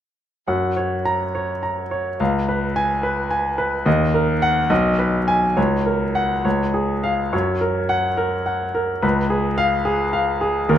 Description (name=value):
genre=classical, virtuoso piano study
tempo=71 BPM (dotted quarters)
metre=6/8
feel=rubato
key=F# major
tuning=A4 = 440 Hz
part: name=clear concert grand piano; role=solo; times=0.5-10.8 s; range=B1 to A#5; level=-18 LUFS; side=equal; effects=none
room=light reverb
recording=minimal, uncompressed stereo recording, lossy compression artefacts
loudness=-18 LUFS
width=side -10 dB against mid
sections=0.5-10.8 A section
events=none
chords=0.5 F#; 2.2 C#7; 3.9 D#m; 4.7 G#m/B; 5.6 F#/C#; 6.4 C#; 7.3 F#; 9.0 C#7